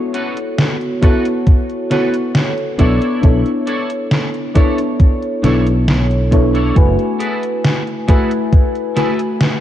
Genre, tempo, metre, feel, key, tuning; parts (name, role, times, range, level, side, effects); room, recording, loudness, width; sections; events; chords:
vaporwave; 68 BPM; 4/4; straight; A4 = 440 Hz
mellow FM electric piano; accompaniment; 0.0-9.6 s; A3 to G#5; -17 LUFS; left 1 dB; lush chorus, analog delay
clean electric guitar; riff; 0.1-9.2 s; C#4 to C#5; -27 LUFS; right 2 dB; ensemble chorus, analog delay
gated 80s digital drum machine; drums; 0.1-9.6 s; hi-hat, snare drum; -18 LUFS; equal; gated reverb, gated reverb snare, overdrive
electronic kick drum; drums; 1.0-8.7 s; -11 LUFS; equal; overdrive
fretless electric bass; bass; 2.8-7.0 s; F#1 to B1; -16 LUFS; equal
light reverb, digital ambience; dark, warm production, cassette tape; -13 LUFS; side -12 dB against mid
0.0-9.6 A section
0.0 A69; 2.8 Bm11; 6.8 F#m11